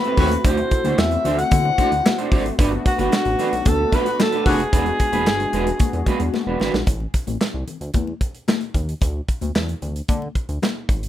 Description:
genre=early-eighties boogie funk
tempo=112 BPM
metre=4/4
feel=straight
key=A dorian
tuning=A4 = 440 Hz
part: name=breathy alto saxophone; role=melody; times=0.0-6.3 s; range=F#4 to F#5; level=-22 LUFS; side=left 1 dB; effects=none
part: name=mellow synth brass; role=accompaniment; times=0.0-6.8 s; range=G#3 to F#4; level=-26 LUFS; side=left 3 dB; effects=chorus
part: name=electric guitar at the edge of break-up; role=riff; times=0.0-6.8 s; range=G#3 to C5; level=-25 LUFS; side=right 5 dB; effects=lush chorus
part: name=modern studio drum kit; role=drums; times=0.0-11.1 s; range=handclaps, hi-hat, kick drum, snare drum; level=-21 LUFS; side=equal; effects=none
part: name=warm horn section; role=second line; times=0.2-0.3, 4.1-4.6 s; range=F#3 to F#4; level=-25 LUFS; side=left 4 dB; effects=none
part: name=chorused synth bass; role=bass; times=0.2-11.1 s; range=E1 to D3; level=-25 LUFS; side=equal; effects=none
part: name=congas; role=percussion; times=0.2-11.0 s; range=none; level=-29 LUFS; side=left 7 dB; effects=none
room=moderate studio reverb, RT60 0.6 s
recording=rough home demo mix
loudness=-18 LUFS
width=side -12 dB against mid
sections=0.0-6.9 A section; 6.9-11.1 B section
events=drum fill 6.3-6.9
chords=0.4 D7; 2.6 Gmaj9; 4.7 E9; 6.9 Am; 9.0 E7

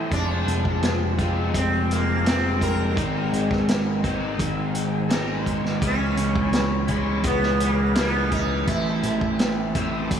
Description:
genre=psychedelic rock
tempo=84 BPM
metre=4/4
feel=straight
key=unclear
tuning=A4 = 437 Hz
part: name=mellow tonewheel organ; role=sustained chords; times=0.0-10.2 s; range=Fb3 to C6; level=-33 LUFS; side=right 3 dB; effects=slow rotary speaker, chorus vibrato
part: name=overdriven semi-hollow guitar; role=riff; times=0.0-10.2 s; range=Ab2 to F4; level=-26 LUFS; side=left 1 dB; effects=flanger
part: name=sitar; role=melody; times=0.1-10.2 s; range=Bb3 to Bb4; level=-27 LUFS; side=equal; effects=tape echo
part: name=picked electric bass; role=bass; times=0.1-10.2 s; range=F1 to Db2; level=-26 LUFS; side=equal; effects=none
part: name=vintage drum kit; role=drums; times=0.1-10.2 s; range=hi-hat, kick drum, snare drum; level=-26 LUFS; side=equal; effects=none
room=moderate lush hall reverb, RT60 2.7 s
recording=dreamy mix soaked in reverb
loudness=-20 LUFS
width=side -8 dB against mid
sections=0.0-10.2 A section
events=none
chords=0.1 Fm; 3.0 Abadd9; 5.8 Dbm7; 8.7 Am

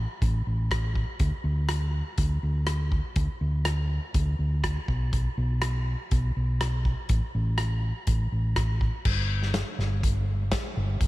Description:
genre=folk rock and heartland rock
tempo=122 BPM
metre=4/4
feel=straight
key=unclear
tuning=A4 = 440 Hz
part: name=hollow-body short-scale fingered electric bass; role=bass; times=0.0-11.1 s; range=G1 to D2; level=-26 LUFS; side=equal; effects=none
part: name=loose indie drum kit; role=drums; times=0.2-11.1 s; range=crash cymbal, hi-hat, kick drum, rim click, snare drum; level=-29 LUFS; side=equal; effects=none
room=little or no reverb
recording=none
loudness=-24 LUFS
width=side -18 dB against mid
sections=0.0-9.1 A section; 9.1-11.1 B section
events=none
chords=none

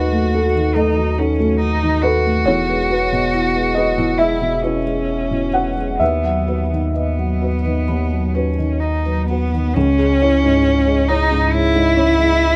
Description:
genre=neoclassical piano and strings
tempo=63-71 BPM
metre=4/4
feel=rubato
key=C# minor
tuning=A4 = 440 Hz
part: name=rich cello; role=second line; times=0.0-12.6 s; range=B3 to F#4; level=-22 LUFS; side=equal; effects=none
part: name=felt-muted upright piano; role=accompaniment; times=0.0-12.6 s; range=C#2 to F#5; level=-22 LUFS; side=equal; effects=none
part: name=marimba with soft mallets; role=arpeggios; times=0.0-12.5 s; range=C#4 to B5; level=-28 LUFS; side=equal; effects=slapback echo
part: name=warm sub bass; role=bass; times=0.0-12.6 s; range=E1 to D#2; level=-23 LUFS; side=equal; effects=none
room=light reverb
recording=none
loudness=-17 LUFS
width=mono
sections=0.0-9.8 A section; 9.8-12.6 B section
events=none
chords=0.0 D#dim; 2.5 Eadd9; 6.0 B/D#; 9.8 C#m

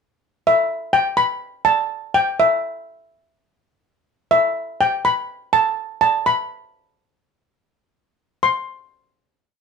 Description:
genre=calypso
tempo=124 BPM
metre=4/4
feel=straight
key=unclear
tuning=A4 = 441 Hz
part: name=steel pan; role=solo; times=0.5-8.7 s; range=E5 to C6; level=-16 LUFS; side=equal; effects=none
room=moderate studio reverb, RT60 0.5 s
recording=dark, warm production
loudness=-17 LUFS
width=side -5 dB against mid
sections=0.0-0.7 pickup bar; 0.7-8.4 verse; 8.4-9.6 final note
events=none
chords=none

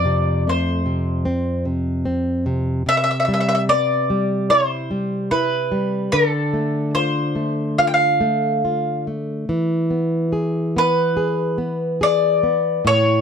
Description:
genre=fado-style ballad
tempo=73 BPM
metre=4/4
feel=rubato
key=unclear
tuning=A4 = 441 Hz
part: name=mandolin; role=melody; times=0.0-13.2 s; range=A4 to G5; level=-19 LUFS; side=left 1 dB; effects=none
part: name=flamenco guitar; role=accompaniment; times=0.0-13.2 s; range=F2 to G#4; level=-20 LUFS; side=equal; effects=none
room=light reverb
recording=dark, warm production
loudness=-17 LUFS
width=side -7 dB against mid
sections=0.0-13.2 A section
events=none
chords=0.0 F; 2.9 Cmaj7; 6.1 Dm7; 9.5 E7

